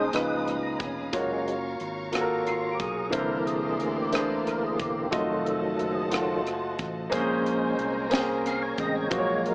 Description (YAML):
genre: slow gospel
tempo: 60 BPM (dotted quarters)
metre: 6/8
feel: straight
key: Bb minor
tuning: A4 = 440 Hz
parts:
  - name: clear concert grand piano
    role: accompaniment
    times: 0.0-9.5 s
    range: Bb2 to Gb5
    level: -28 LUFS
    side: equal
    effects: none
  - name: percussive tonewheel organ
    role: sustained chords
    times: 0.0-9.5 s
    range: Db3 to F5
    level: -29 LUFS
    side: equal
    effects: slow rotary speaker, overdrive, chorus vibrato
  - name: warm studio string section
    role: sustained chords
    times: 0.0-9.5 s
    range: Bb4 to Eb6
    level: -37 LUFS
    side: equal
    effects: none
  - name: fingered electric bass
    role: bass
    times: 0.0-9.5 s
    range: E1 to D2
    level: -37 LUFS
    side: equal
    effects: none
  - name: crisp fusion drum kit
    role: drums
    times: 0.1-9.5 s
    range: hi-hat, kick drum, rim click, snare drum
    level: -31 LUFS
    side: equal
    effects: tape echo
room: moderate spring reverb, RT60 2.1 s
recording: echo-heavy mix, small speaker sound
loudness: -25 LUFS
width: side -32 dB against mid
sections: 0.0-9.5 A section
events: tonewheel organ solo 0.0-9.5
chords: 0.1 Db13; 1.1 Gbmaj7; 3.1 C9; 5.1 F7b9; 7.1 Bbm9